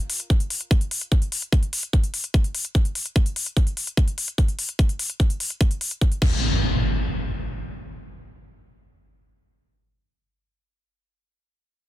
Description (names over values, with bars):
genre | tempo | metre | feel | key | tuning
psychedelic trance | 147 BPM | 4/4 | straight | none | none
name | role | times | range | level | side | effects
drum and bass drum kit | drums | 0.1-6.3 s | crash cymbal, hi-hat | -28 LUFS | left 3 dB | none
electronic kick drum | drums | 0.3-6.3 s | none | -18 LUFS | equal | none
impact | sound effects | 6.2-10.8 s | none | -24 LUFS | equal | none
room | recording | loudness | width
little or no reverb | dense, heavily limited modern master | -20 LUFS | side -14 dB against mid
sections
0.0-6.4 A section; 6.4-9.7 B section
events
none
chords
none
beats
0.30 0.71 1.12 | 1.52 1.93 2.34 2.75 | 3.16 3.56 3.97 4.38 | 4.79 5.20 5.61 6.01 | 6.42 6.83 7.24 7.65 | 8.05 8.46 8.87 9.28